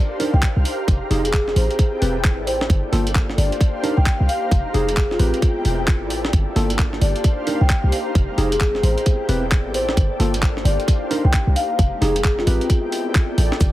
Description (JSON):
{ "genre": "UK garage, two-step garage", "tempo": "132 BPM", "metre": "4/4", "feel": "swing 62% on 16ths", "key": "unclear", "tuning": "A4 = 440 Hz", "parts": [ { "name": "soft string machine", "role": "sustained chords", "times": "0.0-13.7 s", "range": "Ab3 to B4", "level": "-32 LUFS", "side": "equal", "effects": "ensemble chorus, sidechain pumping" }, { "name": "ethereal airy pad", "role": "texture", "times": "0.0-13.7 s", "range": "G4 to G5", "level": "-29 LUFS", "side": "equal", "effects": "ensemble chorus, built-in reverb, sidechain pumping" }, { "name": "mellow tine electric piano", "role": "stabs", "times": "0.2-12.7 s", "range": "Bb3 to B4", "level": "-25 LUFS", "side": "equal", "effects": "medium stereo tremolo, dub echo" }, { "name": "breakbeat sampler-style drum kit", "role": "drums", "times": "0.2-13.7 s", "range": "cabasa, handclaps, hi-hat, snare drum", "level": "-26 LUFS", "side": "equal", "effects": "none" }, { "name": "marimba with soft mallets", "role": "melody", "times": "0.3-12.6 s", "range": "F4 to G5", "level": "-25 LUFS", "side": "left 1 dB", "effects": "dub echo" }, { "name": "short 808-style bass", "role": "bass", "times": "0.3-13.7 s", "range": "E1 to C2", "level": "-20 LUFS", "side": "equal", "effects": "none" }, { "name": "electronic kick drum", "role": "drums", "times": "0.4-13.7 s", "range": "none", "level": "-17 LUFS", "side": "equal", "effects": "none" } ], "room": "light reverb", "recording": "heavily compressed radio sound, multiband compression", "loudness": "-16 LUFS", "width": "side -15 dB against mid", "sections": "0.0-13.7 A section", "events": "none", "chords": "0.0 Cm9; 0.9 Fm9; 1.6 Am9; 2.7 Gm9; 3.6 Cm9; 4.5 Fm9; 5.2 Am9; 6.3 Gm9; 7.2 Cm9; 8.2 Fm9; 8.8 Am9; 10.0 Gm9; 10.9 Cm9; 11.8 Fm9; 12.5 Am9", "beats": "0.42 | 0.88 1.33 1.79 2.24 | 2.70 3.15 3.61 4.06 | 4.52 4.97 5.42 5.88 | 6.33 6.79 7.24 7.70 | 8.15 8.61 9.06 9.52 | 9.97 10.43 10.88 11.33 | 11.79 12.24 12.70 13.15 | 13.61" }